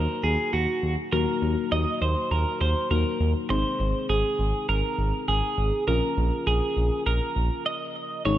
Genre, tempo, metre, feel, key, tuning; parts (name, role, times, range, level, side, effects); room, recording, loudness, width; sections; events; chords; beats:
synth-pop; 101 BPM; 4/4; straight; Eb dorian; A4 = 440 Hz
twelve-string electric guitar; melody; 0.0-8.4 s; Gb4 to Eb5; -27 LUFS; right 2 dB; spring reverb, tape echo
muted felt-like synth keys; accompaniment; 0.0-8.4 s; Bb3 to Bb4; -30 LUFS; left 4 dB; chorus
smooth synth bass; bass; 0.0-8.4 s; Ab1 to Eb2; -25 LUFS; equal
light reverb; -23 LUFS; side -12 dB against mid
0.0-8.3 A section
stop 7.7-8.3
0.0 Ebm; 3.5 Ab; 5.9 Bbm
0.53 | 1.12 1.72 2.31 2.91 | 3.50 4.09 4.69 5.28 | 5.88 6.47 7.06 7.66 | 8.25